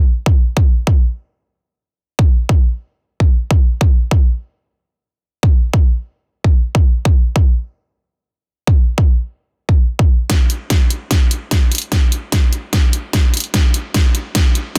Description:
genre	dubstep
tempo	148 BPM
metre	4/4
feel	half-time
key	none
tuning	none
part	electronic kick drum	drums	0.3-14.8 s	none	-14 LUFS	equal	none
part	dubstep drum kit	drums	10.3-14.8 s	hi-hat, snare drum	-22 LUFS	equal	low-pass filter on snare, low-pass filter on hats, low-pass filter on room
room	little or no reverb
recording	dense, heavily limited modern master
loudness	-15 LUFS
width	mono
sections	0.0-10.3 A section; 10.3-14.8 B section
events	build-up 10.3-14.8; drum fill 10.3-14.8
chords	none

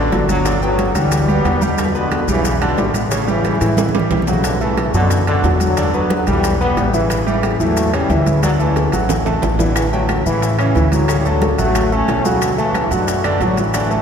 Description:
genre	latin, salsa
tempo	181 BPM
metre	4/4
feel	straight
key	D major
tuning	A4 = 440 Hz
part	brilliant trombone section	melody	0.0-14.0 s	G2 to C#4	-19 LUFS	left 1 dB	none
part	bright baby grand piano	accompaniment	0.0-14.0 s	C#3 to G5	-20 LUFS	right 2 dB	none
part	upright bass	bass	0.0-14.0 s	G1 to A2	-19 LUFS	equal	none
part	bongos	percussion	0.1-14.0 s	none	-28 LUFS	left 2 dB	none
part	congas	percussion	0.1-14.0 s	none	-26 LUFS	right 1 dB	none
part	maracas	percussion	0.1-14.0 s	none	-32 LUFS	left 8 dB	none
part	timbales	percussion	0.1-13.9 s	none	-26 LUFS	right 3 dB	none
part	claves	percussion	9.8-13.9 s	none	-32 LUFS	left 4 dB	none
room	wet cathedral reverb, RT60 5.4 s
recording	recorded in a church or concert hall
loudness	-14 LUFS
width	side -7 dB against mid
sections	0.0-14.0 A section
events	drum fill 3.4-4.4, 8.4-9.8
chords	0.5 Gmaj7; 1.8 Em7; 3.1 A7; 4.4 Bm7; 5.8 Em7; 7.1 A7; 8.4 Dadd9; 9.8 A7; 11.1 Dmaj7

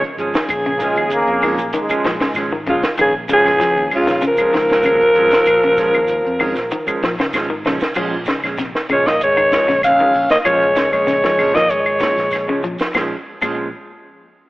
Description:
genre	afrobeat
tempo	96 BPM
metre	4/4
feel	straight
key	Bb minor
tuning	A4 = 441 Hz
part	breathy alto saxophone	melody	0.0-12.6 s	F4 to F5	-15 LUFS	equal	slapback echo
part	electric guitar at the edge of break-up	arpeggios	0.0-13.6 s	Bb2 to F3	-25 LUFS	left 2 dB	harmonic tremolo
part	clean electric guitar	stabs	0.0-13.7 s	F3 to Db4	-25 LUFS	right 2 dB	none
part	fingered electric bass	bass	0.0-13.7 s	Ab1 to F2	-32 LUFS	equal	none
part	compact cocktail drum kit	drums	0.0-13.6 s	crash cymbal, hi-hat, kick drum, snare drum	-23 LUFS	equal	none
part	trombone with bucket mute	second line	0.2-12.6 s	Db3 to Db4	-23 LUFS	right 1 dB	none
part	shekere	percussion	0.2-13.6 s	none	-35 LUFS	right 3 dB	none
part	claves	percussion	0.5-13.6 s	none	-24 LUFS	left 2 dB	none
part	clear trombone section	second line	0.8-2.5 s	Ab3 to Bb3	-20 LUFS	right 1 dB	none
room	moderate echo chamber reverb, RT60 2.0 s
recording	telephone sound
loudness	-14 LUFS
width	side -19 dB against mid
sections	0.0-8.0 A section; 8.0-12.9 B section; 12.9-14.5 C section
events	drum fill 7.3-8.0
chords	0.0 Bbm7

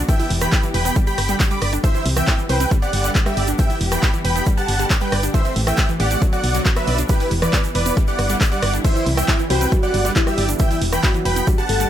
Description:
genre	uplifting trance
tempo	137 BPM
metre	4/4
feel	straight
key	G major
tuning	A4 = 440 Hz
part	muted studio string section	sustained chords	0.0-11.9 s	D3 to G4	-30 LUFS	left 3 dB	sidechain pumping
part	solid FM bass	bass	0.0-11.9 s	E1 to C2	-21 LUFS	equal	sidechain pumping
part	big supersaw lead	melody	0.1-11.9 s	G4 to D6	-23 LUFS	right 1 dB	sidechain pumping, ping-pong delay
part	wide unison pluck	arpeggios	0.1-11.9 s	E3 to D5	-26 LUFS	right 2 dB	vintage 12-bit sampler grit, sidechain pumping, ping-pong delay
part	electronic kick drum	drums	0.1-11.6 s	none	-18 LUFS	equal	none
part	punchy analog drum machine	drums	0.1-11.9 s	crash cymbal, handclaps, hi-hat, rim click	-25 LUFS	right 1 dB	none
part	egg shaker	percussion	0.1-11.9 s	none	-32 LUFS	right 3 dB	none
part	warm velvety synth lead	second line	8.8-11.9 s	E4 to A4	-24 LUFS	left 1 dB	chorus, tremolo, tape echo
room	digital ambience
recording	none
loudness	-16 LUFS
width	side -11 dB against mid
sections	0.0-11.9 A section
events	none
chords	0.1 Em; 1.0 G; 1.8 C; 2.7 G; 3.6 Em; 4.5 G; 5.3 Am7; 6.2 Bm; 7.1 Em; 8.0 G; 8.8 C; 9.7 G; 10.6 Em

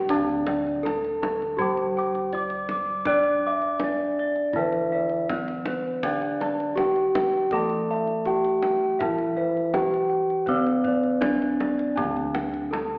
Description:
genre	Javanese gamelan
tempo	81 BPM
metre	4/4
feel	straight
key	D slendro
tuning	A4 = 438 Hz
part	gamelan-type bronze metallophone	melody	0.0-13.0 s	C4-45c to D5	-29 LUFS	equal	none
part	gamelan-type bronze metallophone	accompaniment	0.0-13.0 s	D3 to D4	-32 LUFS	equal	none
part	gamelan-type bronze metallophone	arpeggios	0.0-11.9 s	C5-45c to D6	-32 LUFS	equal	none
part	gamelan-type bossed gongs	bass	0.0-13.0 s	D2 to D5	-36 LUFS	equal	none
part	gamelan-type bossed gongs	arpeggios	0.1-13.0 s	C5-45c to D6	-34 LUFS	equal	none
part	kendang	percussion	0.1-12.9 s	none	-37 LUFS	equal	none
room	wet recital hall reverb, RT60 1.7 s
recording	recorded in a church or concert hall, AM radio sound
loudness	-25 LUFS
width	mono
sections	0.1-12.0 A section; 12.0-13.0 A section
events	none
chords	none

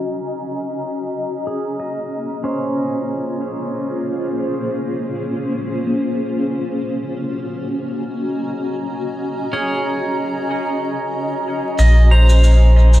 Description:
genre	ambient dub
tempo	free time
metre	none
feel	none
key	Bb minor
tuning	A4 = 440 Hz
part	granular cloud pad	sustained chords	0.0-13.0 s	Bb3 to Bb5	-22 LUFS	left 1 dB	built-in reverb
part	pedal steel guitar	arpeggios	1.5-4.5, 9.5-13.0 s	Db4 to Bb5	-24 LUFS	right 2 dB	dub echo
part	warm sub bass	bass	11.8-13.0 s	Bb1	-9 LUFS	equal	none
part	shaker	drums	11.8-13.0 s	none	-30 LUFS	right 1 dB	dub echo
room	light reverb, small room ambience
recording	vinyl crackle, low-pass filter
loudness	-17 LUFS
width	side -14 dB against mid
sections	0.0-11.8 A section; 11.8-13.0 B section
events	filter sweep on pedal steel guitar 0.0-11.8; filter sweep 0.0-11.8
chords	0.0 Gb6; 1.5 Bbm9; 6.6 Gb6; 11.8 Bbm9

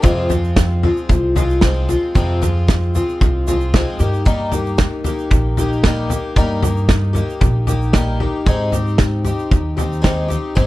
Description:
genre	indie folk with a building arrangement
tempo	114 BPM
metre	4/4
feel	straight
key	Eb major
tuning	A4 = 439 Hz
part	picked twelve-string acoustic guitar	accompaniment	0.0-10.7 s	F2 to G4	-21 LUFS	left 2 dB	none
part	upright bass	bass	0.0-10.7 s	Bb1 to Ab2	-19 LUFS	equal	none
part	loose indie drum kit	drums	0.0-10.7 s	kick drum, snare drum, toms	-17 LUFS	equal	none
part	tube shaker	percussion	0.0-10.7 s	none	-36 LUFS	right 25 dB	none
room	little or no reverb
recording	none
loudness	-14 LUFS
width	side -17 dB against mid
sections	0.0-10.7 A section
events	none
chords	0.0 Fm; 4.0 Eb; 8.5 Abmaj7

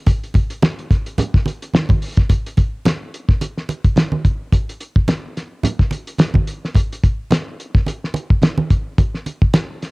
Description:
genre	funk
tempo	108 BPM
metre	4/4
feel	swing 56% on 16ths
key	none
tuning	none
part	cloth-damped thuddy drum kit	drums	0.1-9.9 s	hi-hat, kick drum, snare drum	-15 LUFS	equal	vintage 12-bit sampler grit, cassette tape
part	congas	percussion	0.1-9.7 s	none	-21 LUFS	right 3 dB	none
room	small room ambience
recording	home recording on cassette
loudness	-16 LUFS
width	side -25 dB against mid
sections	0.0-2.3 A section; 2.3-9.9 B section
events	none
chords	none

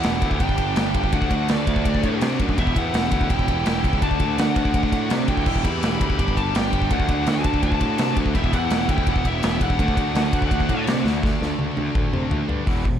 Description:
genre	heavy metal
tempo	166 BPM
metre	4/4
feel	straight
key	unclear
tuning	A4 = 440 Hz
part	high-gain lead guitar	melody	0.0-10.8 s	D5 to B5	-27 LUFS	right 1 dB	distortion
part	bluesy overdriven lead guitar	second line	0.0-10.8 s	A3 to G4	-33 LUFS	equal	none
part	distorted electric guitar	riff	0.0-13.0 s	E2 to G4	-29 LUFS	left 14 dB	overdrive
part	raw garage guitar	riff	0.0-13.0 s	E2 to D4	-28 LUFS	right 1 dB	overdrive
part	scooped high-gain guitar	riff	0.0-13.0 s	E2 to D4	-32 LUFS	right 13 dB	distortion
part	fuzz picked electric bass	bass	0.0-13.0 s	E1 to C3	-25 LUFS	equal	overdrive
part	big rock drum kit	drums	0.0-12.9 s	crash cymbal, hi-hat, kick drum, ride cymbal, snare drum, toms	-23 LUFS	equal	none
room	little or no reverb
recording	dark, warm production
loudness	-19 LUFS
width	side -9 dB against mid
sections	0.0-11.2 A section; 11.2-12.7 B section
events	drum fill 11.0, 11.2-12.7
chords	0.4 G; 1.1 D; 2.6 Em; 4.0 D; 5.5 Em; 6.2 G; 6.9 D; 8.3 Em; 9.8 D; 11.2 D5

